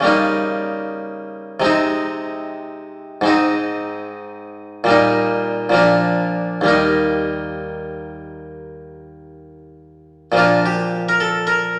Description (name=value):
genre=classical, baroque-style suite movement for harpsichord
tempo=64-78 BPM (dotted quarters)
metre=12/8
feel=rubato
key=Eb major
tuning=A4 = 440 Hz
part: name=harpsichord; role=solo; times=0.0-11.8 s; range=Eb2 to Bb4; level=-19 LUFS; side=equal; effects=none
room=wet recital hall reverb, RT60 1.5 s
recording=none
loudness=-18 LUFS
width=mono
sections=0.0-10.4 A section; 10.4-11.8 A section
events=none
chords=0.1 Eb7/Db; 1.7 Ab/C; 3.3 Ab; 4.9 Eb/Bb; 5.8 Bb; 6.7 Eb; 10.4 Bb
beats=| 0.09 0.88 1.68 2.48 | 3.30 4.12 4.93 5.78 | 6.70 7.63 8.56 9.47 | 10.37 11.21